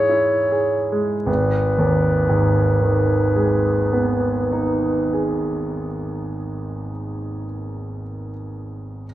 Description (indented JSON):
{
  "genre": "classical, romantic duo for clarinet and grand piano",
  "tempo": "43 BPM",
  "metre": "4/4",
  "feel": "rubato",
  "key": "G# minor",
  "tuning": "A4 = 440 Hz",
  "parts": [
    { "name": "mellow clarinet", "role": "melody", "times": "0.0-5.3 s", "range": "B4 to C#5", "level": "-21 LUFS", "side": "equal", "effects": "none" },
    { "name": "bright grand piano", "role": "accompaniment", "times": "0.0-9.1 s", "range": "G#1 to G#4", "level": "-20 LUFS", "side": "right 1 dB", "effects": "none" }
  ],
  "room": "wet recital hall reverb, RT60 1.3 s",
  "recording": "none",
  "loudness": "-18 LUFS",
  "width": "side -14 dB against mid",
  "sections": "0.0-1.3 A section; 1.3-6.8 B section",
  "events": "slowing down 0.0-1.3",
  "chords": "0.0 C#m/G#; 1.3 G#m"
}